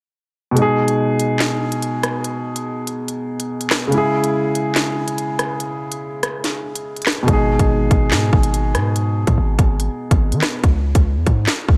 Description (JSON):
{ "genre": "hip hop, drill", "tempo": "143 BPM", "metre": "4/4", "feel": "half-time", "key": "G# minor", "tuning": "A4 = 442 Hz", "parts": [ { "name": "dark baby grand piano", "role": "accompaniment", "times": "0.5-10.7 s", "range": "B2 to G#4", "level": "-22 LUFS", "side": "equal", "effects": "none" }, { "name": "drill drum kit", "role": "drums", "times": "0.6-11.8 s", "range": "handclaps, hi-hat, kick drum, rim click, snare drum", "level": "-21 LUFS", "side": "equal", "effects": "none" }, { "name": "hard-hitting 808-style bass", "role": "bass", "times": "7.3-11.8 s", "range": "G#1 to D#3", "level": "-20 LUFS", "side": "equal", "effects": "none" } ], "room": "little or no reverb", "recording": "none", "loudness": "-19 LUFS", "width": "mono", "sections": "0.6-11.8 A section", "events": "kick muted 0.6-7.3", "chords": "0.6 G#m; 3.9 C#m; 7.3 G#m; 10.6 C#5" }